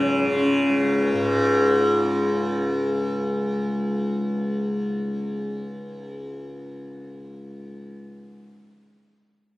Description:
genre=indian classical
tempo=126 BPM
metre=4/4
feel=straight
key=unclear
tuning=A4 = 440 Hz
part: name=sitar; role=melody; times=0.0-2.8 s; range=C#4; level=-25 LUFS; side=left 1 dB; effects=none
part: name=tanpura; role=drone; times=0.0-8.3 s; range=C#2 to C#3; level=-23 LUFS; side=equal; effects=none
room=wet recital hall reverb, RT60 1.8 s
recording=recorded on a phone in the room, club reverb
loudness=-20 LUFS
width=side -18 dB against mid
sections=0.0-1.3 A section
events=none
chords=none

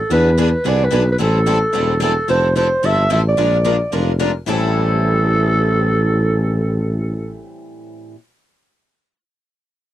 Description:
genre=acoustic string swing (jazz manouche)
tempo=220 BPM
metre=4/4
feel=swing 58% on 8ths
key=A minor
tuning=A4 = 440 Hz
part: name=growling clarinet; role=melody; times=0.0-7.4 s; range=A4 to E5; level=-18 LUFS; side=right 1 dB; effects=cassette tape
part: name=picked steel-string acoustic guitar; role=accompaniment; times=0.1-8.2 s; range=A2 to Bb4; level=-25 LUFS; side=left 9 dB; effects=none
part: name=picked steel-string acoustic guitar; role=accompaniment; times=0.1-8.2 s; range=A2 to B4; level=-26 LUFS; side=right 9 dB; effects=none
part: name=breathy tuba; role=bass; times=0.1-7.4 s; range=E1 to E2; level=-17 LUFS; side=equal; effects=transformer saturation
room=light reverb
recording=home recording on cassette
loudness=-14 LUFS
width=side -13 dB against mid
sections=0.0-2.3 A section; 2.3-4.5 B section; 4.5-6.6 C section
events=none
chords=0.1 E7; 1.2 Am7; 2.3 Fmaj7; 3.4 Bb7; 4.5 Am7

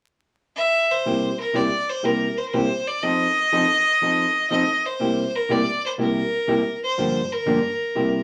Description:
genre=country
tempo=122 BPM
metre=4/4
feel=swing 68% on 8ths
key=unclear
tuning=A4 = 440 Hz
part: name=bright fiddle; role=melody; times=0.6-8.2 s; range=Bb4 to E5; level=-24 LUFS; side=equal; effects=none
part: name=hollow-body jazz guitar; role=accompaniment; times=1.1-8.2 s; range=G2 to A4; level=-25 LUFS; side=equal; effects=none
room=wet small room reverb, RT60 0.5 s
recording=vinyl crackle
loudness=-22 LUFS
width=mono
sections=0.0-1.1 A section; 1.1-8.2 B section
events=none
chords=0.0 N.C.; 1.1 C7; 3.0 F7; 5.0 C7; 7.0 Gm7

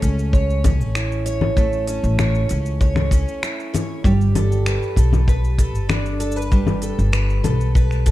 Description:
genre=folktronica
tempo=97 BPM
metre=4/4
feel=straight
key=A mixolydian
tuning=A4 = 440 Hz
part: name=picked twelve-string acoustic guitar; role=arpeggios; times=0.0-8.1 s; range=G3 to C#5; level=-24 LUFS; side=right 2 dB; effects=tape echo
part: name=upright bass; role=bass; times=0.0-8.1 s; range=G1 to C#2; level=-20 LUFS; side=equal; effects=none
part: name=kick drum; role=drums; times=0.0-8.1 s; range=none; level=-18 LUFS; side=equal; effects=none
part: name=organic electronic drum kit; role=drums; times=0.0-8.1 s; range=cabasa, congas, finger snaps, hi-hat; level=-25 LUFS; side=left 3 dB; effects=none
room=little or no reverb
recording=dark, warm production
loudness=-16 LUFS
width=side -15 dB against mid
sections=0.0-8.1 A section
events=none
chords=0.0 A; 4.0 Gadd9

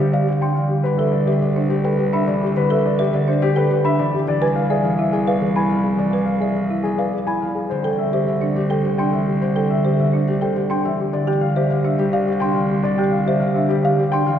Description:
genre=classical, minimalist pattern music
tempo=105 BPM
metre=3/4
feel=straight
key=C major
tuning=A4 = 440 Hz
part: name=dark concert grand piano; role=melody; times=0.0-14.4 s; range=G4 to G#5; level=-22 LUFS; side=left 5 dB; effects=none
part: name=concert harp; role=accompaniment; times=0.0-14.4 s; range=D3 to B3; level=-22 LUFS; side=right 1 dB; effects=none
part: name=folk marimba with medium mallets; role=arpeggios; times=0.0-14.3 s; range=D4 to D5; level=-25 LUFS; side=right 4 dB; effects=none
part: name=clear cello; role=bass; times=0.0-14.4 s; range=C2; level=-23 LUFS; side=right 1 dB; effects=none
part: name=small celesta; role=arpeggios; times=0.1-14.3 s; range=E5 to C6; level=-28 LUFS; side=left 1 dB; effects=none
room=wet church reverb, RT60 2.5 s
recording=none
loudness=-17 LUFS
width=side -9 dB against mid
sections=0.0-14.4 A section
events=none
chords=0.0 G7sus4/C; 0.8 Cmaj9; 4.3 E7b9/C; 7.7 Am7/C; 11.1 G7sus4/C

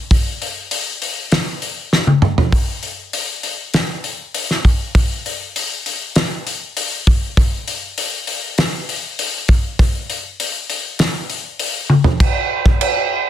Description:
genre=rock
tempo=99 BPM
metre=4/4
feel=straight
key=none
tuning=none
part: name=loose indie drum kit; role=drums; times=0.1-12.9 s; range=crash cymbal, hi-hat, kick drum, snare drum, toms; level=-16 LUFS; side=equal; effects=none
room=light reverb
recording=dense, heavily limited modern master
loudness=-16 LUFS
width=side -11 dB against mid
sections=0.0-12.2 A section; 12.2-13.3 B section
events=drum fill 1.9-2.5, 11.9-12.2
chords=none

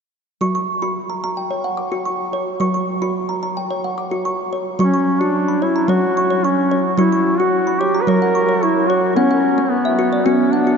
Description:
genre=world meditative, meditative tuned percussion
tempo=110 BPM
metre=4/4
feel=straight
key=F# phrygian dominant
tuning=A4 = 439 Hz
part: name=kalimba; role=arpeggios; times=0.4-10.8 s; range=F#3 to D6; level=-18 LUFS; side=equal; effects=none
part: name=warm duduk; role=melody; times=4.8-10.8 s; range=B3 to B4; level=-17 LUFS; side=equal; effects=diffuse ambient delay
room=wet huge ambient reverb, RT60 8.6 s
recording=in a vast, echoing space, cassette tape, nothing above 7.5 kHz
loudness=-16 LUFS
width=side -6 dB against mid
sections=0.4-4.8 A section; 4.8-10.8 B section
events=none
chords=0.4 F#; 9.2 Bm

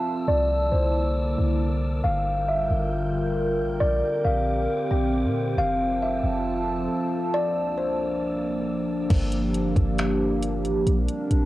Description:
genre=hip hop, atmospheric cloud-rap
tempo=136 BPM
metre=4/4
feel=half-time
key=G dorian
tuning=A4 = 440 Hz
part: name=dark analog pad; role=sustained chords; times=0.0-11.5 s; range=C2 to A5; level=-26 LUFS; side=equal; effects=chorus, phaser, sidechain pumping, low-pass filter, cassette tape
part: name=wind-like tuned noise texture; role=texture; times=0.0-9.1 s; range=C4 to G6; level=-39 LUFS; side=equal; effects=built-in reverb, cassette tape
part: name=kalimba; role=melody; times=0.3-9.1 s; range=C5 to G5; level=-27 LUFS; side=left 1 dB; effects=low-pass filter, analog delay
part: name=clean 808-style bass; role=bass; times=0.3-11.5 s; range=F1 to Bb2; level=-26 LUFS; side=equal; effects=none
part: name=smooth R&B drum kit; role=drums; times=9.1-11.4 s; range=crash cymbal, finger snaps, hi-hat, kick drum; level=-26 LUFS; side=equal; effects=cassette tape
room=digital ambience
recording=home recording on cassette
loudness=-22 LUFS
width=side -16 dB against mid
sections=0.0-9.1 A section; 9.1-11.5 B section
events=filter sweep 0.0-9.1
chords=0.3 C13; 2.0 Gm7; 3.8 Bb69; 5.6 Fmaj7; 7.3 C13; 9.1 Gm7; 10.9 Bb69

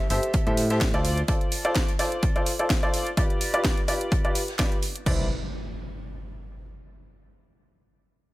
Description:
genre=piano house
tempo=127 BPM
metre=4/4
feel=swing 55% on 16ths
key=C major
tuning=A4 = 436 Hz
part: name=downlifter and impact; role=sound effects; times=0.1-1.3, 5.1-7.0 s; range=none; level=-37 LUFS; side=equal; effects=none
part: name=bright grand piano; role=riff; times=0.1-5.2 s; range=E4 to E5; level=-27 LUFS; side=equal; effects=sidechain pumping, low-pass filter, dub echo
part: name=modern bright fingered electric bass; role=bass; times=0.1-1.2, 5.1-5.3 s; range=G1 to A2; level=-26 LUFS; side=equal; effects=tube saturation, sidechain pumping
part: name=garage drum kit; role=drums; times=0.1-5.0 s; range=hi-hat, snare drum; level=-30 LUFS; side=equal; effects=none
part: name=loose indie drum kit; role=drums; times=0.1-4.9 s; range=hi-hat, snare drum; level=-40 LUFS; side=right 2 dB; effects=none
part: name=punchy analog drum machine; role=drums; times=0.3-5.2 s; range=crash cymbal, kick drum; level=-25 LUFS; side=equal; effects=overdrive
room=studio reverb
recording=none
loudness=-22 LUFS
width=side -18 dB against mid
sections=0.0-5.1 A section; 5.1-7.0 B section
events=none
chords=0.0 Am7; 1.0 Dm7; 3.2 G7; 5.1 Cmaj9

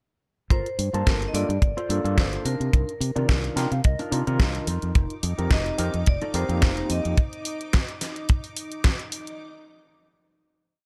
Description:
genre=nu-disco, nu disco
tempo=108 BPM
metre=4/4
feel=swing 55% on 16ths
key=unclear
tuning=A4 = 440 Hz
part: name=vibraphone with hard mallets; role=melody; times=0.5-7.2 s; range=Bb4 to Eb5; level=-35 LUFS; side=equal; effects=tape echo
part: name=mellow electric guitar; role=riff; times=0.5-6.9 s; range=D4 to G5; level=-36 LUFS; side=equal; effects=lush chorus
part: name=modern bright fingered electric bass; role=bass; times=0.5-7.1 s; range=F1 to C3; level=-29 LUFS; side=equal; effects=none
part: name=kick drum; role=drums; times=0.5-9.0 s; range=none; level=-22 LUFS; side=equal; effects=none
part: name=pop drum kit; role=drums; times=0.5-9.4 s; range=hi-hat, snare drum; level=-32 LUFS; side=equal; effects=overdrive
part: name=overdriven tine electric piano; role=accompaniment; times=0.9-7.2 s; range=Eb3 to A5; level=-33 LUFS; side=equal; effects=medium tremolo, sidechain pumping, slapback echo
part: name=string machine, full ensemble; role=sustained chords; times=5.0-9.4 s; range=Eb4 to D6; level=-40 LUFS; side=equal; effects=ensemble chorus, sidechain pumping
room=studio reverb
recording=none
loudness=-24 LUFS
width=mono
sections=0.5-9.4 groove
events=clean electric guitar fill 3.3-5.0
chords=0.5 Gm9; 2.5 Cm11; 4.7 F7sus4; 7.2 N.C.

